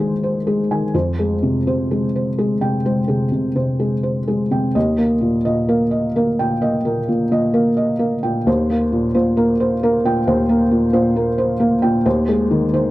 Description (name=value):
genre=neoclassical minimalist piano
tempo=62-68 BPM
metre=4/4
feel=rubato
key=Eb major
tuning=A4 = 440 Hz
part: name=felt-muted upright piano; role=solo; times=0.0-12.9 s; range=Eb2 to Ab5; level=-16 LUFS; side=equal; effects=none
room=small room reverb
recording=dry, close 1970s-style studio recording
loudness=-16 LUFS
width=side -17 dB against mid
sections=0.0-12.9 A section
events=none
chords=0.0 Ab/Eb; 0.9 Fmadd9; 4.8 Eb; 8.5 Cm7/Eb; 12.1 Ab/Eb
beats=| 0.94 1.91 2.85 3.80 | 4.75 5.69 6.62 7.54 | 8.47 9.38 10.28 11.16 | 12.05